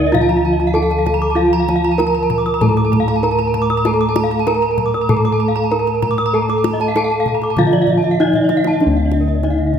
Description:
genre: Balinese gamelan.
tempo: 97 BPM.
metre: 4/4.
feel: straight.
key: D pelog.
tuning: A4 = 440 Hz.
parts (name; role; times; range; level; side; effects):
gamelan-type bronze metallophone; melody; 0.0-9.8 s; D4 to Bb4; -18 LUFS; right 1 dB; none.
gamelan-type bronze metallophone; accompaniment; 0.0-9.8 s; D3 to A3; -23 LUFS; right 2 dB; none.
gamelan-type bronze metallophone; arpeggios; 0.0-9.7 s; Bb4 to Eb6+35c; -22 LUFS; left 4 dB; none.
gamelan-type bossed gongs; bass; 0.0-9.8 s; D2 to A4; -20 LUFS; left 2 dB; none.
gamelan-type bronze metallophone; arpeggios; 0.1-9.8 s; D5 to D6; -22 LUFS; right 4 dB; none.
kendang; percussion; 0.1-9.8 s; none; -25 LUFS; left 3 dB; none.
room: moderate scoring stage reverb, RT60 1.5 s.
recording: none.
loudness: -13 LUFS.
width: side -8 dB against mid.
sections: 0.0-9.8 A section.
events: drum fill 8.3-8.8.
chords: none.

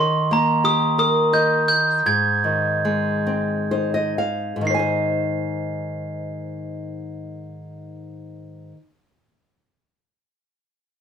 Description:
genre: children's music, lullaby.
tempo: 39-61 BPM (dotted quarters).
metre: 6/8.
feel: straight.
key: Ab major.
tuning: A4 = 441 Hz.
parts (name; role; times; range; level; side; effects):
glockenspiel with soft plastic mallets; melody; 0.0-8.8 s; Bb5 to C7; -21 LUFS; right 2 dB; none.
nylon-string guitar; accompaniment; 0.0-8.9 s; Ab2 to Ab5; -22 LUFS; left 1 dB; none.
room: moderate studio reverb, RT60 0.6 s.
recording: none.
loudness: -18 LUFS.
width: side -7 dB against mid.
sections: 0.0-4.7 A section; 4.7-10.8 B section.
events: slowing down 0.0-4.7; nylon-string guitar fill 3.3-4.7.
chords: 0.0 Eb; 2.1 Ab.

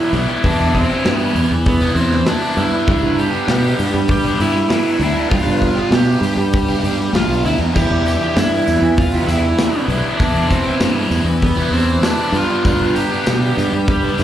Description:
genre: classic rock.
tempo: 98 BPM.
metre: 4/4.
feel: straight.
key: G major.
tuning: A4 = 441 Hz.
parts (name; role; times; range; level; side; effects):
overdriven slide guitar; melody; 0.0-14.2 s; B3 to G4; -20 LUFS; right 1 dB; analog delay.
tonewheel organ; sustained chords; 0.0-14.2 s; G3 to E5; -28 LUFS; left 1 dB; overdrive, chorus vibrato, slow rotary speaker.
overdriven electric guitar; riff; 0.0-14.2 s; E3 to G4; -20 LUFS; equal; phaser, slapback echo.
modern bright fingered electric bass; bass; 0.1-14.2 s; A1 to B2; -18 LUFS; equal; none.
big rock drum kit; drums; 0.1-14.2 s; crash cymbal, hi-hat, kick drum, snare drum; -21 LUFS; equal; none.
tambourine; percussion; 7.8-14.2 s; none; -37 LUFS; left 2 dB; none.
room: small room ambience.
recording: live gig heard through the venue's PA, club reverb.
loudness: -14 LUFS.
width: side -11 dB against mid.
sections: 0.0-14.2 A section.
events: none.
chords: 0.0 Em7; 2.6 G; 7.8 Em7; 12.3 G.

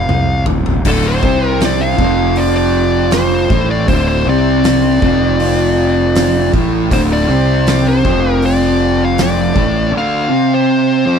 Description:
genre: stoner and doom metal.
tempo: 79 BPM.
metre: 4/4.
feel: straight.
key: D minor.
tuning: A4 = 443 Hz.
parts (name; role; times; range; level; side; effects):
fuzz lead guitar; melody; 0.0-11.2 s; A4 to F5; -18 LUFS; left 3 dB; distortion.
fuzz fingered electric bass; bass; 0.0-9.9 s; D1 to C2; -16 LUFS; equal; overdrive, tube saturation.
oversized low-tuned drum kit; drums; 0.1-9.7 s; crash cymbal, hi-hat, kick drum, snare drum, toms; -19 LUFS; equal; none.
fuzz guitar; riff; 0.8-11.2 s; D2 to C4; -14 LUFS; right 1 dB; distortion.
room: little or no reverb.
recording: none.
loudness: -11 LUFS.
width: side -7 dB against mid.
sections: 0.0-11.2 A section.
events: drum fill 0.0-0.9.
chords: 0.0 Dm.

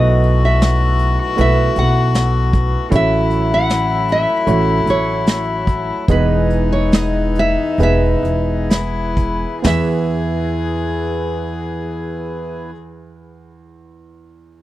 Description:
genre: acoustic folk-pop ballad.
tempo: 62-78 BPM.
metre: 4/4.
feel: straight.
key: E major.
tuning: A4 = 440 Hz.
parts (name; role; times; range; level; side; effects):
nylon-string guitar; melody; 0.0-12.7 s; B4 to F#5; -21 LUFS; right 1 dB; none.
warm cello; second line; 0.0-12.7 s; D#4 to G#4; -22 LUFS; left 6 dB; none.
warm concert grand piano; accompaniment; 0.0-14.6 s; A1 to E5; -23 LUFS; right 5 dB; none.
pedal harmonium; sustained chords; 0.0-12.7 s; E3 to G#4; -27 LUFS; equal; none.
upright bass; bass; 0.0-12.7 s; E1 to E2; -18 LUFS; equal; none.
vintage brush drum kit; drums; 0.2-9.9 s; hi-hat, kick drum, snare drum, toms; -16 LUFS; equal; none.
room: small room ambience.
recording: dry, close 1970s-style studio recording.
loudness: -14 LUFS.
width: side -15 dB against mid.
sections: 0.0-9.6 A section; 9.6-13.5 B section.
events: slowing down 2.9-9.6.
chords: 0.0 B7sus4; 2.9 F#m7/A; 6.1 Emaj7; 9.6 E.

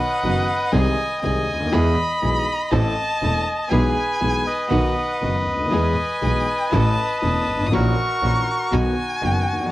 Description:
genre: tango.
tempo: 120 BPM.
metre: 4/4.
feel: rubato.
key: E major.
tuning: A4 = 439 Hz.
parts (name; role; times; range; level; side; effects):
bandoneon; melody; 0.0-9.7 s; F#4 to D#5; -24 LUFS; equal; analog delay.
warm violin; second line; 0.0-9.7 s; F#5 to D#6; -26 LUFS; equal; none.
warm grand piano; accompaniment; 0.2-9.7 s; E1 to A4; -24 LUFS; left 2 dB; none.
rich symphonic string section; stabs; 0.2-9.4 s; A#3 to A4; -31 LUFS; right 5 dB; none.
clear double bass; bass; 0.2-9.4 s; E1 to E2; -23 LUFS; right 1 dB; none.
room: light reverb.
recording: cassette tape.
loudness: -18 LUFS.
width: side -16 dB against mid.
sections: 0.0-9.7 A section.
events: none.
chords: 0.0 B; 0.7 G#/B#; 1.7 E; 2.7 Am; 3.7 E/B; 4.7 B; 5.7 E; 6.7 A; 7.7 F#7/A#; 8.7 B.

